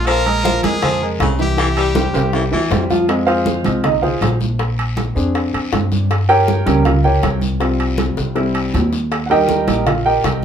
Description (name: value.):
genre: latin, salsa.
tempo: 159 BPM.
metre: 4/4.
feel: straight.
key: F minor.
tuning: A4 = 438 Hz.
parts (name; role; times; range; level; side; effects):
brilliant trumpet; melody; 0.0-2.7 s; G4 to Bb4; -21 LUFS; equal; none.
clear grand piano; accompaniment; 0.0-10.4 s; E3 to G5; -18 LUFS; right 1 dB; none.
upright bass; bass; 0.0-10.4 s; Bb1 to G2; -19 LUFS; equal; none.
growling baritone saxophone; second line; 0.1-2.8 s; Db3 to G3; -21 LUFS; left 2 dB; none.
bongos; percussion; 0.1-10.4 s; none; -26 LUFS; left 4 dB; none.
congas; percussion; 0.1-10.4 s; none; -24 LUFS; right 2 dB; none.
guiro; percussion; 0.1-10.4 s; none; -34 LUFS; left 5 dB; none.
timbales; percussion; 0.1-10.4 s; none; -25 LUFS; right 3 dB; none.
room: wet small room reverb, RT60 0.5 s.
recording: band playing live in one room.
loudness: -14 LUFS.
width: side -8 dB against mid.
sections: 0.0-3.1 A section; 3.1-10.4 B section.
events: drum fill 2.0-3.1, 8.2-9.1; grand piano solo 3.1-10.4.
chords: 0.1 Bb7(no3); 1.6 C; 3.1 Fm; 4.6 Bb7; 6.1 Gdim; 7.6 Csus4; 8.4 C; 9.1 Eb.